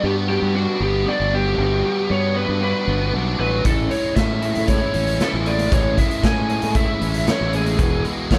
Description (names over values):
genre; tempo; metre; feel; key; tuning
indie rock; 116 BPM; 4/4; straight; A major; A4 = 440 Hz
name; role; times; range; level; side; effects
lead guitar through a small cranked amp; melody; 0.0-8.4 s; F#4 to G#5; -26 LUFS; equal; overdrive, slapback echo
electric guitar through a small old amp; riff; 0.0-8.4 s; E2 to F#4; -28 LUFS; equal; none
scooped high-gain guitar; riff; 0.0-8.4 s; G2 to E4; -30 LUFS; equal; distortion, analog chorus, slapback echo
fuzz fingered electric bass; bass; 0.0-8.4 s; E1 to A2; -25 LUFS; equal; overdrive
raw garage drum kit; drums; 3.7-8.4 s; hi-hat, kick drum, snare drum; -24 LUFS; equal; none
room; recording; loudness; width
little or no reverb; none; -20 LUFS; mono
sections
0.0-8.4 A section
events
none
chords
0.0 Gmaj7; 3.7 Amaj7; 7.8 Eadd9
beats
0.04 0.55 1.07 | 1.59 2.10 2.62 3.14 | 3.65 4.17 4.69 5.21 | 5.72 6.24 6.76 7.28 | 7.79 8.31